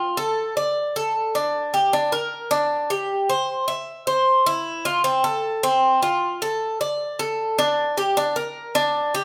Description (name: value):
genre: latin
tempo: 154 BPM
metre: 4/4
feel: straight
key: F major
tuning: A4 = 441 Hz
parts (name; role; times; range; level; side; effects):
- Cuban tres; solo; 0.0-9.2 s; C4 to E5; -22 LUFS; equal; none
room: moderate large studio reverb, RT60 1.2 s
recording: band playing live in one room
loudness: -22 LUFS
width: mono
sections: 0.0-5.0 A section; 5.0-9.2 A section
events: none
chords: none